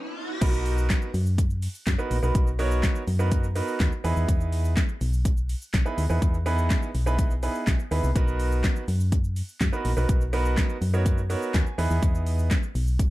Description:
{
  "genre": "dance-pop",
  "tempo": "124 BPM",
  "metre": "4/4",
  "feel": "straight",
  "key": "B major",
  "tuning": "A4 = 440 Hz",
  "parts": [
    { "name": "clear concert grand piano", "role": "accompaniment", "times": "0.0-12.6 s", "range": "B3 to G#5", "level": "-30 LUFS", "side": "right 3 dB", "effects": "sidechain pumping" },
    { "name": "solid FM bass", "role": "bass", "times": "0.4-13.1 s", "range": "A#1 to F#2", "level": "-25 LUFS", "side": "equal", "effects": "sidechain pumping" },
    { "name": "pop drum kit", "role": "drums", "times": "0.4-13.1 s", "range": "crash cymbal, handclaps, hi-hat, kick drum, shaker, snare drum", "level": "-26 LUFS", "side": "equal", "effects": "overdrive" }
  ],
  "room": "little or no reverb",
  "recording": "dark, warm production",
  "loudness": "-22 LUFS",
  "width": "side -17 dB against mid",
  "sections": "0.4-13.1 A section",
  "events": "drop 0.4-13.1; grand piano fill 11.1-12.0",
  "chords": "0.4 Bmaj7; 4.0 Emaj7; 8.2 Bmaj7; 11.8 Emaj7"
}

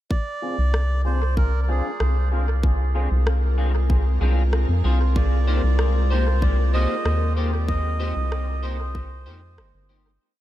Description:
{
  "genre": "ambient dub",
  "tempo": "95 BPM",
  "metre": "4/4",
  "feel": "straight",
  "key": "C minor",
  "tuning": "A4 = 439 Hz",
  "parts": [
    { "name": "melodica", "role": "melody", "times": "0.1-9.9 s", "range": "F4 to Eb5", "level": "-31 LUFS", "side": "right 3 dB", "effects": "dub echo" },
    { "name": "soft additive organ-like pad", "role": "sustained chords", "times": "1.6-10.2 s", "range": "Ab3 to Bb4", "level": "-32 LUFS", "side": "left 2 dB", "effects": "ensemble chorus, built-in reverb" },
    { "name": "electronic kick drum", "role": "drums", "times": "0.1-9.1 s", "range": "none", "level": "-23 LUFS", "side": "equal", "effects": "none" },
    { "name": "electric guitar at the edge of break-up", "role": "stabs", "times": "0.4-10.1 s", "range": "Bb3 to C5", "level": "-31 LUFS", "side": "left 2 dB", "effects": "ensemble chorus, low-pass filter, dub echo" },
    { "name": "round analog bass", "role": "bass", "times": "0.6-10.2 s", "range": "G1 to F2", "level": "-20 LUFS", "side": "equal", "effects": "none" },
    { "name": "electronic rim click", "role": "drums", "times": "0.7-9.7 s", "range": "none", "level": "-34 LUFS", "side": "equal", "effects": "none" }
  ],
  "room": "digital ambience",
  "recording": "none",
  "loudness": "-19 LUFS",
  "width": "side -14 dB against mid",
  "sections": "0.1-10.2 groove",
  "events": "fade-in on ambient pad 0.1-10.2; filter sweep on clean electric guitar 0.1-10.2; fade-out 6.8-10.2",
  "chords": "0.1 Dm7b5/C; 5.2 Cm7"
}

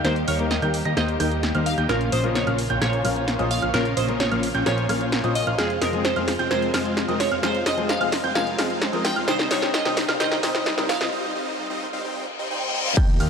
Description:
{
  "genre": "EDM, festival progressive house",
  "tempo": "130 BPM",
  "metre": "4/4",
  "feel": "straight",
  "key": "unclear",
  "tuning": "A4 = 440 Hz",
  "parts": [
    { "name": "glassy wavetable pluck", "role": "melody", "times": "0.0-11.1 s", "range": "Ab4 to G5", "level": "-28 LUFS", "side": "right 2 dB", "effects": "chorus, ping-pong delay" },
    { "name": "bright concert grand piano", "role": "accompaniment", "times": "0.0-10.9 s", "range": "Bb2 to C5", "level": "-30 LUFS", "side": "left 5 dB", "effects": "sidechain pumping" },
    { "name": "clear symphonic string section", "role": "sustained chords", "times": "0.0-13.3 s", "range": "C3 to G4", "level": "-35 LUFS", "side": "left 1 dB", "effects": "none" },
    { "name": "dark grand piano", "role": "arpeggios", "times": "0.0-13.3 s", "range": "Eb6 to Bb6", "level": "-30 LUFS", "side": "right 3 dB", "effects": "sidechain pumping, low-pass filter, ping-pong delay" },
    { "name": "supersaw chords", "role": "riff", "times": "0.0-13.3 s", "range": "G3 to Bb5", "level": "-27 LUFS", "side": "equal", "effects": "phaser, sidechain pumping, low-pass filter, ping-pong delay" },
    { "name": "fat analog bass", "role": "bass", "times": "0.0-13.3 s", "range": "F1 to F2", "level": "-29 LUFS", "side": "equal", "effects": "sidechain pumping" },
    { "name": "big-room dance drum kit", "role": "drums", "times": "0.0-13.3 s", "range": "crash cymbal, hi-hat, rim click, shaker, snare drum", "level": "-27 LUFS", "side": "equal", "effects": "none" },
    { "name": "riser and reverse cymbal", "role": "sound effects", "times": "9.2-13.0 s", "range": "none", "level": "-32 LUFS", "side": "left 3 dB", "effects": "none" },
    { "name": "electronic kick drum", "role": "drums", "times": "13.0-13.1 s", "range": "none", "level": "-18 LUFS", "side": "equal", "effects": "none" }
  ],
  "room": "moderate huge ambient reverb, RT60 7.8 s",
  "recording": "dark, warm production, high-pass filter",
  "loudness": "-20 LUFS",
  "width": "side -6 dB against mid",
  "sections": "0.0-13.0 A section",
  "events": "build-up 0.0-13.0; drum fill 0.0-11.1; filter sweep on supersaw synth 0.0-13.0; filter sweep 0.0-13.0; break 11.1-13.0; reverse cymbal 12.3-13.0",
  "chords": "0.0 Eb; 1.9 Bbm; 5.6 Fm; 9.3 Cm"
}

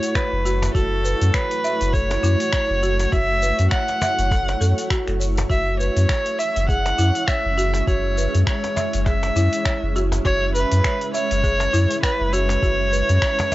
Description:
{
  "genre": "organic downtempo",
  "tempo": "101 BPM",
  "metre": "4/4",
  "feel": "swing 58% on 16ths",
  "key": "F# minor",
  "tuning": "A4 = 440 Hz",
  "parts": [
    { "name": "rich kamancheh", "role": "melody", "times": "0.0-13.5 s", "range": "A4 to F#5", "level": "-22 LUFS", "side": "equal", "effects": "analog delay" },
    { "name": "granular cloud pad", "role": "sustained chords", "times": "0.0-13.5 s", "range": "G#3 to C#5", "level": "-29 LUFS", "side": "right 1 dB", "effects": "built-in reverb, sidechain pumping" },
    { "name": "afro-pop drum kit", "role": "drums", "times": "0.0-13.5 s", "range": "finger snaps, hi-hat, shaker", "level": "-29 LUFS", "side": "equal", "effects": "overdrive" },
    { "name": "folk marimba with medium mallets", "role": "arpeggios", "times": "0.2-13.5 s", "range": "E4 to E5", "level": "-28 LUFS", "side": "right 1 dB", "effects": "analog delay" },
    { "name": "electronic kick drum", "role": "drums", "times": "0.2-13.4 s", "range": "none", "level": "-22 LUFS", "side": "equal", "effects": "overdrive" },
    { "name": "cajon", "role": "percussion", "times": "0.2-13.5 s", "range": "none", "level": "-28 LUFS", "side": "left 1 dB", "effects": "none" },
    { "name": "warm sub bass", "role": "bass", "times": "0.3-13.2 s", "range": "F#1 to F#2", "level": "-20 LUFS", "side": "equal", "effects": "tube saturation, sidechain pumping" },
    { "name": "wind-like tuned noise texture", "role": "texture", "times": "5.9-13.5 s", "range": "E5", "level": "-38 LUFS", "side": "right 3 dB", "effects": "none" }
  ],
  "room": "little or no reverb",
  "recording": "dry, gritty hardware recording, cassette tape, nothing above 7.8 kHz",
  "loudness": "-18 LUFS",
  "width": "side -16 dB against mid",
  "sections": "0.0-13.5 A section",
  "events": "none",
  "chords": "0.0 F#m7; 5.5 C#m/F#"
}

